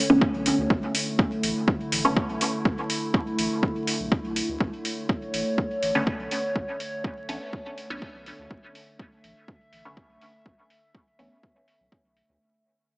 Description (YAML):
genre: dub techno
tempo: 123 BPM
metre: 4/4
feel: straight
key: B minor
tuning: A4 = 442 Hz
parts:
  - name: warbly tape-like pad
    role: sustained chords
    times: 0.0-12.4 s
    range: D3 to E5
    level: -30 LUFS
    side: equal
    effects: chorus, built-in reverb, phaser, vintage 12-bit sampler grit, sidechain pumping
  - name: filtered dub chord stab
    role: stabs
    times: 0.0-11.8 s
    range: D3 to C#4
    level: -25 LUFS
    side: equal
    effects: phaser, cassette tape, sidechain pumping, dub echo
  - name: warm sub bass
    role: bass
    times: 0.1-12.4 s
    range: F#1 to D2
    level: -38 LUFS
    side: equal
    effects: sidechain pumping
  - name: electronic kick drum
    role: drums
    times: 0.2-12.0 s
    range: none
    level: -23 LUFS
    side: equal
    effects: overdrive
  - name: electronic hi-hat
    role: drums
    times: 0.5-12.3 s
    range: none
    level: -29 LUFS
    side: equal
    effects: overdrive, low-pass filter on snare, low-pass filter on hats
room: moderate lush hall reverb, RT60 2.1 s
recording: vinyl crackle, small speaker sound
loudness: -24 LUFS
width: side -29 dB against mid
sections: 0.0-12.4 A section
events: fade-out 0.0-12.4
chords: 0.0 Bm9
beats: 0.21 | 0.70 1.19 1.68 2.17 | 2.65 3.14 3.63 4.12 | 4.60 5.09 5.58 6.07 | 6.55 7.04 7.53 8.02 | 8.51 8.99 9.48 9.97 | 10.46 10.95 11.43 11.92